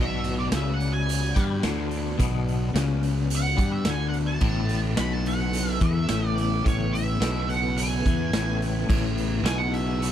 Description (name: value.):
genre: psychedelic rock.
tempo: 108 BPM.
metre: 4/4.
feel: straight.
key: unclear.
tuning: A4 = 440 Hz.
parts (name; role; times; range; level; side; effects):
octave-fuzz lead guitar; melody; 0.0-10.1 s; C#5 to B5; -31 LUFS; right 4 dB; wah, distortion, tape echo.
string machine, violas; sustained chords; 0.0-10.1 s; C#3 to D5; -35 LUFS; right 6 dB; ensemble chorus.
twangy electric guitar; riff; 0.0-10.1 s; A2 to G3; -28 LUFS; left 8 dB; rotary speaker.
fuzz fingered electric bass; bass; 0.0-10.1 s; A1 to G2; -27 LUFS; right 1 dB; overdrive.
raw garage drum kit; drums; 0.2-10.1 s; crash cymbal, hi-hat, kick drum, snare drum; -28 LUFS; right 1 dB; none.
room: little or no reverb.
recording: none.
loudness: -22 LUFS.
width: side -10 dB against mid.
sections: 0.0-10.1 A section.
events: lead electric guitar solo 0.0-10.1.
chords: 0.0 Bm; 4.4 Aadd9.